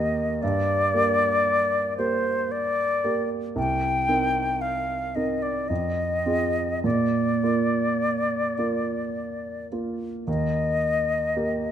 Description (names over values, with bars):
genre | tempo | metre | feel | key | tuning
classical, romantic duo for flute and grand piano | 50-58 BPM | 3/4 | rubato | Eb major | A4 = 438 Hz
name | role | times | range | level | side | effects
concert flute | melody | 0.0-11.7 s | C5 to G5 | -24 LUFS | left 2 dB | none
warm concert grand piano | accompaniment | 0.0-11.7 s | C2 to Bb4 | -26 LUFS | right 3 dB | none
room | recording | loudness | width
moderate scoring stage reverb, RT60 1.7 s | close, detailed microphones | -22 LUFS | side -9 dB against mid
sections
0.0-10.3 A section; 10.3-11.7 B section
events
none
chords
0.4 Gm; 3.6 Cm7; 5.7 Fm; 6.8 Bb; 10.3 Eb